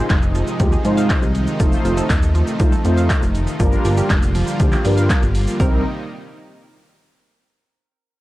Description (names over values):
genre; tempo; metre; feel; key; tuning
dance-pop; 120 BPM; 4/4; straight; C minor; A4 = 440 Hz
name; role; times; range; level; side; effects
mellow synth brass; accompaniment; 0.0-5.8 s; G3 to C5; -24 LUFS; equal; chorus, sidechain pumping
supersaw pad; sustained chords; 0.0-5.8 s; C3 to F4; -25 LUFS; equal; sidechain pumping
hollow square pluck; arpeggios; 0.0-5.8 s; Eb3 to F5; -28 LUFS; right 3 dB; chorus, sidechain pumping, tape echo
downlifter; sound effects; 0.2-1.6 s; none; barely audible; none; none
chorused synth bass; bass; 0.1-5.8 s; F1 to Ab2; -19 LUFS; equal; sidechain pumping
punchy analog drum machine; drums; 0.1-5.7 s; handclaps, hi-hat, kick drum, shaker, snare drum; -18 LUFS; equal; none
tube shaker; percussion; 1.6-5.8 s; none; -43 LUFS; left 2 dB; none
room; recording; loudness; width
little or no reverb; dry, gritty hardware recording; -15 LUFS; side -17 dB against mid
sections
0.0-5.6 A section; 5.6-7.6 B section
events
none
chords
0.0 Ab6; 1.6 F7; 3.6 Gm7; 5.6 Cm7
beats
0.10 0.60 1.10 | 1.60 2.10 2.60 3.10 | 3.60 4.10 4.60 5.10 | 5.60